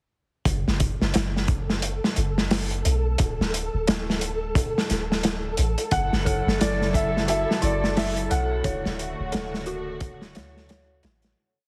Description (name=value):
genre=trip hop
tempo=88 BPM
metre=4/4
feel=swing 59% on 16ths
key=F# minor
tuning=A4 = 440 Hz
part: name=soft 808-style bass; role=bass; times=0.5-11.3 s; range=D1 to D2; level=-30 LUFS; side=equal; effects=none
part: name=crunchy breakbeat drum kit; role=drums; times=0.5-11.4 s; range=hi-hat, kick drum, snare drum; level=-27 LUFS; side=equal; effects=none
part: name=flickering grainy texture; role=texture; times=1.4-11.4 s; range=A4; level=-36 LUFS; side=equal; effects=built-in reverb
part: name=felt-muted upright piano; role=melody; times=5.9-10.7 s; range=D5 to F#5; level=-30 LUFS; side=equal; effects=tape echo
part: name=rich studio string section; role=sustained chords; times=5.9-11.3 s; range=C#3 to A4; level=-35 LUFS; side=equal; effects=none
part: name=dark detuned synth bell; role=arpeggios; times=6.3-11.4 s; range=E4 to C#5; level=-34 LUFS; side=equal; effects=chorus, phaser, vintage 12-bit sampler grit, tape echo
room=light reverb, small room reverb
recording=heavily compressed radio sound, multiband compression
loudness=-25 LUFS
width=mono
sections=0.5-11.4 groove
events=fade-out 7.7-11.4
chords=0.5 F#m; 3.2 D5; 5.9 F#m7; 8.6 Dmaj7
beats=| 0.46 1.14 1.82 2.51 | 3.19 3.87 4.55 5.23 | 5.92 6.60 7.28 7.96 | 8.64 9.32 10.01 10.69